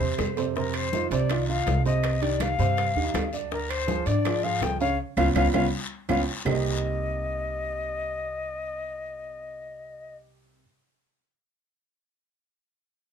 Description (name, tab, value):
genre	Afro-Cuban jazz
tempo	163 BPM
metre	4/4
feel	straight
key	C minor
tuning	A4 = 440 Hz
part	breathy bright jazz flute	melody	0.0-10.2 s	Bb4 to G5	-29 LUFS	left 5 dB	none
part	warm upright piano	accompaniment	0.0-10.6 s	C3 to D5	-29 LUFS	right 6 dB	none
part	upright bass	bass	0.0-10.6 s	C2 to Ab2	-29 LUFS	equal	none
part	bongos	percussion	0.0-6.5 s	none	-37 LUFS	left 7 dB	none
part	congas	percussion	0.0-6.5 s	none	-34 LUFS	left 3 dB	none
part	claves	percussion	0.2-6.5 s	none	-39 LUFS	right 6 dB	none
part	guiro	percussion	0.2-6.5 s	none	-38 LUFS	left 6 dB	none
part	timbales	percussion	0.2-6.5 s	none	-35 LUFS	right 7 dB	none
room	moderate club reverb, RT60 0.6 s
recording	minimal, uncompressed stereo recording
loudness	-24 LUFS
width	side -7 dB against mid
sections	0.6-6.5 A section; 6.5-9.4 B section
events	drum fill 0.0-0.6, 5.4-6.5; band accent 5.0-6.5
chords	0.0 C; 0.6 F5; 2.0 Cm; 3.5 Dm7b5; 5.0 Db7; 6.5 Cm7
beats	0.19 | 0.56 0.93 1.30 1.67 | 2.04 2.41 2.78 3.15 | 3.51 3.88 4.25 4.62 | 4.99 5.36 5.72 6.09 | 6.46 6.83 7.20 7.56 | 7.93 8.30 8.66 9.03